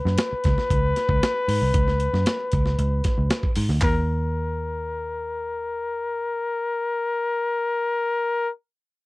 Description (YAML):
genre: funk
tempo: 115 BPM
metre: 4/4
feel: straight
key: unclear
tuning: A4 = 444 Hz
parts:
  - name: clear trombone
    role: second line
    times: 0.0-8.5 s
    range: Bb4 to Cb5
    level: -25 LUFS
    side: left 2 dB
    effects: none
  - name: vintage muted picked electric bass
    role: bass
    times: 0.1-8.5 s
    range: C2 to Ab2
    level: -23 LUFS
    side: equal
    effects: none
  - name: breakbeat sampler-style drum kit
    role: drums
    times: 0.1-3.9 s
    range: handclaps, hi-hat, kick drum, snare drum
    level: -24 LUFS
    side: equal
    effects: none
room: little or no reverb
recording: dry, close 1970s-style studio recording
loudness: -21 LUFS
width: side -21 dB against mid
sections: 0.0-3.8 A section; 3.8-8.0 B section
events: none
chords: 0.0 Db7(no3); 3.8 Eb5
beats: 0.18 0.70 1.22 | 1.74 2.26 2.78 3.30 | 3.82 4.34 4.86 5.38 | 5.90 6.42 6.95 7.47